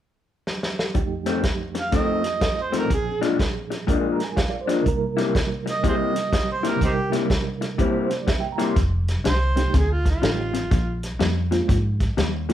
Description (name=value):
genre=electric blues shuffle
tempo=123 BPM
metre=4/4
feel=swing 65% on 8ths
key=F mixolydian from 8.8 s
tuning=A4 = 439 Hz
part: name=warm soul drum kit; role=drums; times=0.5-12.5 s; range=hi-hat, kick drum, snare drum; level=-24 LUFS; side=equal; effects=none
part: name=reed electric piano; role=accompaniment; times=0.9-12.5 s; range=F2 to C6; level=-28 LUFS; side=right 5 dB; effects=overdrive, tremolo
part: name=electric guitar through a small old amp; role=riff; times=0.9-12.5 s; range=F2 to E4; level=-25 LUFS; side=left 5 dB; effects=none
part: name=mellow harmonica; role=melody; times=1.8-11.0 s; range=C4 to F5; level=-26 LUFS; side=right 3 dB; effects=overdrive
part: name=vintage muted fingered electric bass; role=bass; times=8.8-12.5 s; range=F1 to Ab2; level=-23 LUFS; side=equal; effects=none
room=light reverb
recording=band playing live in one room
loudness=-20 LUFS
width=side -11 dB against mid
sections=0.9-8.8 A section; 8.8-12.5 B section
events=drum fill 0.5-0.9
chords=0.0 N.C.; 0.9 F7; 2.9 Bb7; 4.9 C7; 8.8 F9; 10.7 Bb7(no3)